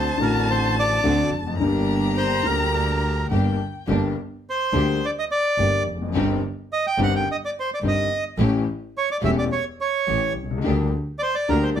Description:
tango; 106 BPM; 4/4; rubato; G harmonic minor; A4 = 439 Hz
bandoneon; melody; 0.0-11.8 s; Bb4 to G5; -23 LUFS; right 2 dB; plate reverb
warm violin; second line; 0.0-3.8 s; G5 to Bb5; -27 LUFS; left 2 dB
warm concert grand piano; accompaniment; 0.0-11.8 s; E1 to G4; -24 LUFS; left 4 dB
rich studio string section; stabs; 0.0-11.8 s; A3 to G4; -31 LUFS; equal
clear double bass; bass; 0.0-11.8 s; E1 to D2; -25 LUFS; right 2 dB
moderate studio reverb, RT60 0.6 s; -20 LUFS; side -9 dB against mid
0.0-3.9 A section; 3.9-11.8 B section
0.0 D7; 1.6 Gm; 6.1 Cm/G; 8.4 A7; 10.6 Gm/D
0.48 1.04 | 1.60 2.17 2.74 3.31 | 3.89 4.46 5.02 5.58 | 6.15 6.71 7.26 7.83 | 8.38 8.95 9.51 10.08 | 10.65 11.21 11.78

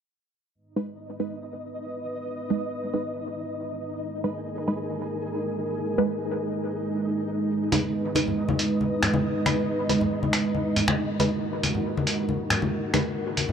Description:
deep dubstep; 138 BPM; 4/4; half-time; G# minor; A4 = 440 Hz
dark analog pad; sustained chords; 0.5-13.5 s; G#3 to B4; -28 LUFS; right 2 dB; chorus
flickering grainy texture; texture; 0.9-13.5 s; D#4 to D#5; -33 LUFS; left 2 dB; built-in reverb
filtered dub chord stab; stabs; 0.8-13.0 s; G#3 to B4; -30 LUFS; right 2 dB; phaser, dub echo
trip hop sampler-style drum kit; drums; 7.7-13.5 s; finger snaps, hi-hat; -28 LUFS; equal
congas; percussion; 7.7-13.5 s; -29 LUFS; left 4 dB
light reverb; dark, warm production; -24 LUFS; side -8 dB against mid
0.5-13.5 A section
filter sweep on synth stab 0.5-13.5
0.5 G#m
| 0.55 0.98 1.42 1.85 | 2.29 2.72 3.16 3.59 | 4.03 4.46 4.89 5.33 | 5.76 6.20 6.63 7.07 | 7.50 7.94 8.37 8.81 | 9.24 9.68 10.11 10.55 | 10.98 11.42 11.85 12.29 | 12.72 13.16

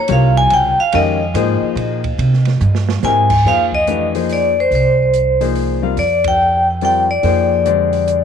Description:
modal jazz; 143 BPM; 3/4; swing 64% on 8ths; Bb dorian, F dorian from 3.5 s; A4 = 436 Hz
vibraphone with medium hard mallets; melody; 0.0-8.2 s; C5 to Ab5; -15 LUFS; equal; tape echo
warm concert grand piano; accompaniment; 0.1-8.2 s; C3 to F5; -20 LUFS; left 13 dB
upright bass; bass; 0.1-8.2 s; C2 to C3; -17 LUFS; right 2 dB
open jazz drum kit; drums; 0.1-8.2 s; crash cymbal, hi-hat, kick drum, ride cymbal, snare drum; -27 LUFS; right 8 dB
wet spring reverb, RT60 1.6 s, studio ambience; 1960s-style stereo with parts hard left and right; -12 LUFS; side -7 dB against mid
0.0-3.5 A section; 3.5-8.2 B section
vibraphone solo 0.0-3.5; drum fill 2.6-3.0; band accent 6.2
0.0 Bbm9; 2.2 C7b13; 3.5 Fm9; 6.0 Gm/F
0.09 0.51 | 0.93 1.35 1.77 | 2.19 2.61 3.03 | 3.45 3.87 4.29 | 4.71 5.13 5.55 | 5.98 6.40 6.82 | 7.24 7.66 8.08

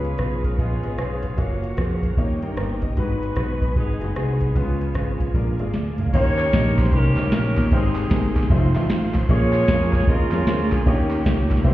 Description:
uptempo gospel; 152 BPM; 4/4; swing 63% on 8ths; A4 = 440 Hz
clear horn section; melody; 0.0-11.7 s; G#3 to Db5; -28 LUFS; equal
bright upright piano; accompaniment; 0.0-11.7 s; G#2 to A#5; -27 LUFS; left 2 dB
bright tonewheel organ; sustained chords; 0.0-11.7 s; E#3 to G5; -33 LUFS; right 6 dB; slow rotary speaker, overdrive, chorus vibrato
dark studio string section; sustained chords; 0.0-6.1 s; F#4 to G#5; -42 LUFS; right 1 dB
fingered electric bass; bass; 0.0-11.7 s; F1 to G2; -23 LUFS; equal
soft vintage rhythm box; drums; 0.0-11.7 s; crash cymbal, hi-hat, kick drum, ride cymbal, rim click, snare drum, toms; -22 LUFS; equal
group handclap; percussion; 6.4-11.6 s; -38 LUFS; right 3 dB
light reverb; heard muffled through a wall, stone room reverb, EQ; -18 LUFS; side -15 dB against mid
0.0-6.1 A section; 6.1-11.7 B section
upright piano fill 2.4-3.0; drum fill 5.7-6.1
0.0 C#7; 1.4 F#maj7; 2.2 D#7; 3.0 G#m7; 4.6 C#7; 5.3 A#7; 6.1 Eb7; 7.7 Abmaj7; 8.5 F7; 9.3 Bbm7; 10.9 Eb7
0.19 0.59 0.98 | 1.38 1.78 2.17 2.57 | 2.97 3.37 3.76 4.16 | 4.56 4.95 5.35 5.74 | 6.14 6.53 6.93 7.32 | 7.72 8.11 8.50 8.90 | 9.29 9.68 10.08 10.47 | 10.87 11.26 11.65

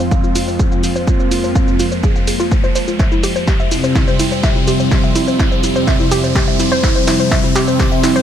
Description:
melodic techno; 125 BPM; 4/4; straight; A4 = 440 Hz
evolving wavetable pad; sustained chords; 0.0-8.2 s; F2 to C5; -23 LUFS; equal; chorus, built-in reverb, sidechain pumping
warbly dusty pluck; arpeggios; 0.0-8.2 s; E4 to F5; -20 LUFS; right 1 dB; chorus, sidechain pumping, ping-pong delay
brassy analog pad; stabs; 0.0-8.2 s; C3 to F4; -18 LUFS; left 1 dB; chorus, phaser, sidechain pumping, ping-pong delay
analog drone; drone; 0.0-8.2 s; F2 to F3; -28 LUFS; equal
punchy analog drum machine; drums; 0.0-8.2 s; hi-hat, shaker, snare drum; -23 LUFS; equal; high-pass filter on perc, high-pass filter on hats, high-pass filter on snare
riser; sound effects; 0.0-8.2 s; -24 LUFS; equal
electronic kick drum; drums; 0.1-7.9 s; -16 LUFS; equal
light reverb; -12 LUFS; side -10 dB against mid
0.0-8.2 A section
build-up 0.0-8.2; riser 0.0-8.2; filter sweep on synth arpeggio sound 0.0-8.2; filter sweep on analog synth pad 0.0-8.2; filter sweep on ambient pad 0.0-8.2; drum fill 3.0-8.2
0.0 Fm; 3.0 C/F
0.12 0.59 | 1.07 1.55 2.04 2.52 | 3.00 3.48 3.96 4.43 | 4.92 5.39 5.88 6.36 | 6.83 7.32 7.79

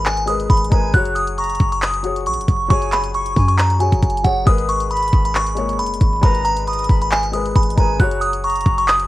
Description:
hip hop, trap; 136 BPM; 4/4; half-time; G# minor; A4 = 440 Hz
delicate synth tine bell; melody; 0.0-9.1 s; F#5 to F#6; -19 LUFS; equal; chorus, phaser, tremolo, cassette tape, analog delay
breathy silver concert flute; second line; 0.0-8.9 s; G#5 to D#6; -30 LUFS; right 8 dB; cassette tape, analog delay
dark baby grand piano; accompaniment; 0.0-9.1 s; F#3 to C#5; -25 LUFS; left 6 dB; cassette tape
clean 808-style bass; bass; 0.0-9.1 s; F#1 to F#2; -21 LUFS; equal
trap drum kit; drums; 0.1-9.1 s; handclaps, hi-hat, kick drum; -19 LUFS; equal; cassette tape
digital ambience; home recording on cassette, vinyl crackle; -15 LUFS; side -16 dB against mid
0.0-9.1 A section
0.0 G#madd9; 0.9 F#sus2; 4.5 G#madd9; 8.0 F#sus2
0.06 0.50 | 0.94 1.38 1.82 2.26 | 2.70 3.14 3.58 4.03 | 4.47 4.91 5.35 5.79 | 6.23 6.67 7.12 7.56 | 8.00 8.44 8.88

